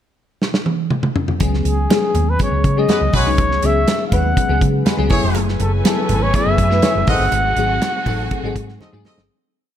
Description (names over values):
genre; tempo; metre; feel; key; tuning
polished 1980s jazz-funk pop; 122 BPM; 4/4; straight; unclear; A4 = 440 Hz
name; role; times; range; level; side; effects
modern studio drum kit; drums; 0.4-9.3 s; hi-hat, kick drum, snare drum, toms; -19 LUFS; right 1 dB; gated reverb
bell-like FM electric piano; accompaniment; 1.4-9.3 s; F#3 to B4; -21 LUFS; left 4 dB; ensemble chorus
hollow-body short-scale fingered electric bass; bass; 1.4-9.3 s; E#1 to C#3; -19 LUFS; equal; none
congas; percussion; 1.4-9.2 s; none; -31 LUFS; right 2 dB; none
breathy flugelhorn; melody; 1.7-8.8 s; G#4 to F#5; -20 LUFS; equal; none
clear horn section; second line; 2.9-9.2 s; G#3 to D#5; -25 LUFS; equal; none
warm studio string section; sustained chords; 5.4-9.3 s; F#3 to G#5; -27 LUFS; right 2 dB; none
room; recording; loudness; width
light reverb, small room reverb; none; -14 LUFS; side -10 dB against mid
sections
0.0-1.4 pickup bar; 1.4-9.3 pre-chorus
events
drum fill 0.4-1.4, 8.8-9.3; fade-out 7.3-9.3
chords
0.0 N.C.; 1.4 C#7sus4; 5.1 F#m11; 7.1 G#7b9